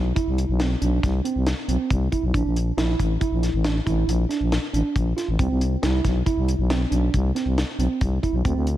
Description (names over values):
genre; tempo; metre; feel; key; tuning
progressive instrumental, band music in an uneven meter; 138 BPM; 7/4; straight; unclear; A4 = 435 Hz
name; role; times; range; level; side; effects
growling FM bass; bass; 0.0-8.8 s; A1 to D2; -22 LUFS; left 1 dB; none
mellow tine electric piano; arpeggios; 0.2-8.7 s; C4 to F4; -26 LUFS; right 5 dB; none
deep reggae drum kit; drums; 0.2-8.8 s; hi-hat, kick drum, snare drum; -27 LUFS; left 1 dB; none
room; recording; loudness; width
light reverb, small room ambience; none; -20 LUFS; side -13 dB against mid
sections
0.0-8.8 A section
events
none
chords
0.0 Cmaj7; 2.3 Bbmaj7; 5.4 Cmaj7